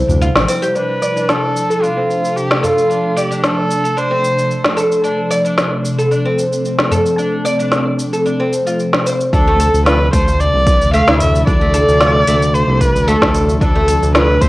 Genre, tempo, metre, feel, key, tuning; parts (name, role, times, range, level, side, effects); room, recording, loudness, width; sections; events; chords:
organic downtempo; 112 BPM; 4/4; straight; D dorian; A4 = 437 Hz
ethereal airy pad; sustained chords; 0.0-14.5 s; C3 to E4; -21 LUFS; equal; ensemble chorus, built-in reverb, sidechain pumping, cassette tape
smooth synth bass; bass; 0.0-0.5, 9.3-14.5 s; A1 to D2; -16 LUFS; equal; tube saturation, sidechain pumping
organic electronic drum kit; drums; 0.1-14.5 s; cabasa, hi-hat, snare drum; -18 LUFS; equal; overdrive, cassette tape
udu; percussion; 0.1-2.7, 6.9-7.0, 11.2-11.3 s; -21 LUFS; left 2 dB
oud; arpeggios; 0.2-14.5 s; A3 to D5; -17 LUFS; equal; low-pass filter, cassette tape, analog delay
clear kamancheh; melody; 0.8-4.8, 9.3-14.5 s; F4 to F5; -17 LUFS; equal; cassette tape, tape echo
electronic kick drum; drums; 9.3-14.5 s; -16 LUFS; equal; overdrive, cassette tape
moderate studio reverb, RT60 0.5 s; home recording on cassette; -12 LUFS; side -18 dB against mid
0.8-9.3 A section; 9.3-14.5 B section
break 0.0-0.8; band accent 0.4; filter sweep on oud 0.8-9.3; filter sweep on ambient pad 0.8-9.3
0.0 Dm7